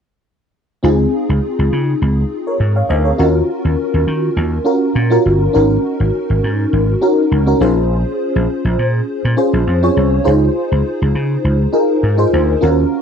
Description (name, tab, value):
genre	polished 1980s jazz-funk pop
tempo	102 BPM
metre	4/4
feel	swing 54% on 16ths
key	Db major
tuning	A4 = 440 Hz
part	FM electric piano with soft pad layer	accompaniment	0.8-13.0 s	C4 to F5	-15 LUFS	equal	ensemble chorus
part	vintage slap bass	bass	0.8-12.8 s	G1 to Eb3	-15 LUFS	equal	none
room	light reverb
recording	dry, close 1970s-style studio recording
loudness	-13 LUFS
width	side -7 dB against mid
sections	0.8-13.0 A section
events	none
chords	0.8 Dbmaj7; 3.2 Ebm9; 5.6 Ab9sus4; 7.6 Bbm7; 10.3 Dbmaj7